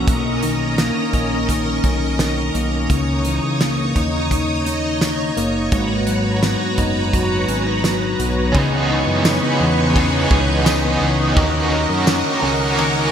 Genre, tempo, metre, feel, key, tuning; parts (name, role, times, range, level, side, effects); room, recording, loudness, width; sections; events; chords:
dream pop; 85 BPM; 4/4; straight; C# dorian; A4 = 439 Hz
string machine, violins; sustained chords; 0.0-13.1 s; C#4 to C#6; -21 LUFS; right 1 dB; ensemble chorus, shimmer reverb
clean electric guitar; arpeggios; 0.0-13.1 s; G#2 to A#4; -21 LUFS; left 2 dB; analog chorus, ping-pong delay
fat analog bass; bass; 0.0-13.1 s; F#1 to F#2; -23 LUFS; equal
loose indie drum kit; drums; 0.1-12.9 s; hi-hat, kick drum, ride cymbal, snare drum, tambourine; -22 LUFS; right 1 dB
overdriven electric guitar; accompaniment; 8.5-13.1 s; C#3 to A#4; -20 LUFS; right 2 dB; tremolo, analog chorus, shimmer reverb
moderate plate reverb, RT60 1.9 s, small room ambience; bright 1980s-style digital production; -16 LUFS; side -8 dB against mid
0.0-8.5 A section; 8.5-13.1 B section
0.1 Bmaj9; 2.9 C#m69; 5.7 G#m11; 8.5 C#m9; 11.4 D#m7